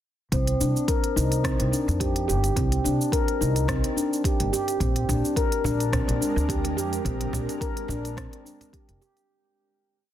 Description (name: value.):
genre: organic downtempo.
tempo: 107 BPM.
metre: 4/4.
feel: swing 54% on 16ths.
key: unclear.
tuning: A4 = 440 Hz.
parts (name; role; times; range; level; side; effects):
handpan; arpeggios; 0.3-9.2 s; C4 to Bb4; -26 LUFS; left 1 dB; low-pass filter, digital delay.
upright bass; bass; 0.3-9.0 s; F1 to F2; -26 LUFS; equal; none.
deep house drum kit; drums; 0.3-9.3 s; cabasa, hi-hat, rim click; -32 LUFS; right 1 dB; none.
electronic kick drum; drums; 0.3-8.9 s; none; -28 LUFS; equal; none.
quartz singing bowl; texture; 0.3-9.3 s; C5; -37 LUFS; equal; none.
ethereal airy pad; sustained chords; 5.3-9.2 s; Ab3 to Bb4; -35 LUFS; right 2 dB; ensemble chorus, built-in reverb, tremolo, sidechain pumping.
cajon; percussion; 5.1-8.7 s; none; -32 LUFS; right 1 dB; none.
room: light reverb, studio ambience.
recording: dense, heavily limited modern master.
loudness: -22 LUFS.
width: side -11 dB against mid.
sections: 0.3-9.3 groove.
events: fade-out 6.3-9.3.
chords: 0.3 C5; 4.8 Bb7.